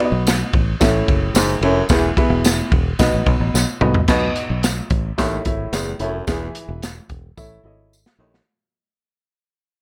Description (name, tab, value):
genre	uptempo 1960s-style soul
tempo	110 BPM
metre	4/4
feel	straight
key	B mixolydian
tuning	A4 = 439 Hz
part	warm upright piano	accompaniment	0.0-8.3 s	A2 to E5	-24 LUFS	equal	none
part	vintage drum kit	drums	0.0-8.5 s	crash cymbal, hi-hat, kick drum, ride cymbal, snare drum, toms	-22 LUFS	equal	none
part	fingered electric bass	bass	0.1-8.4 s	E1 to C2	-24 LUFS	equal	none
part	tambourine	percussion	0.3-8.1 s	none	-30 LUFS	equal	none
part	warm baritone saxophone	riff	1.4-8.4 s	D#2 to B2	-25 LUFS	equal	none
room	light reverb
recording	none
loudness	-18 LUFS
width	mono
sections	0.0-4.1 A section; 4.1-8.5 B section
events	drum fill 3.5-4.1, 7.4-8.5; fade-out 4.1-8.5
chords	0.0 B; 0.8 A; 1.9 E; 3.0 B; 5.2 A; 6.3 E; 7.4 A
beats	0.26 0.81 1.35 | 1.90 2.44 2.99 3.54 | 4.08 4.63 5.18 5.73 | 6.27 6.82 7.37 7.92